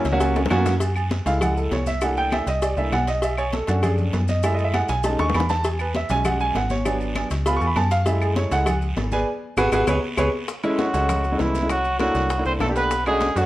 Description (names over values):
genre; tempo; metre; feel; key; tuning
Afro-Cuban jazz; 198 BPM; 4/4; straight; F# minor; A4 = 440 Hz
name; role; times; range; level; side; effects
growling trombone; second line; 0.0-0.2, 10.8-13.5 s; E3 to C#4; -30 LUFS; left 3 dB; none
warm grand piano; accompaniment; 0.0-13.5 s; F#3 to C#6; -23 LUFS; right 1 dB; none
maracas; percussion; 0.0-13.5 s; none; -44 LUFS; left 7 dB; none
metallic FM bass; bass; 0.1-13.5 s; G#1 to F#2; -24 LUFS; equal; none
congas; percussion; 0.1-13.5 s; none; -31 LUFS; left 2 dB; none
cowbell and bongos; percussion; 0.1-13.5 s; none; -30 LUFS; left 2 dB; none
guiro; percussion; 0.1-13.5 s; none; -39 LUFS; right 3 dB; none
agogo bells and timbales; percussion; 0.2-13.5 s; none; -32 LUFS; right 4 dB; none
claves; percussion; 0.5-13.2 s; none; -34 LUFS; left 2 dB; none
warm trumpet; melody; 10.8-13.5 s; E4 to C5; -23 LUFS; right 2 dB; none
room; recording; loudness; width
light reverb; worn, warbling old tape, cassette tape, warbly pitch drift; -19 LUFS; side -15 dB against mid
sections
0.8-10.5 A section; 10.5-13.5 B section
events
drum fill 0.4-0.8, 5.2-5.6, 9.7-10.5; grand piano solo 0.8-10.5; band accent 9.3-10.5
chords
0.0 F#; 0.8 F#m7; 2.0 C13; 3.2 Bm9; 4.4 F#m9; 5.0 B13; 5.6 E6; 6.9 G#m7b5; 7.5 C#7alt; 8.1 F#m7; 9.3 G#m7; 9.9 C#5; 10.5 F#m7; 11.7 C13; 12.9 Bm9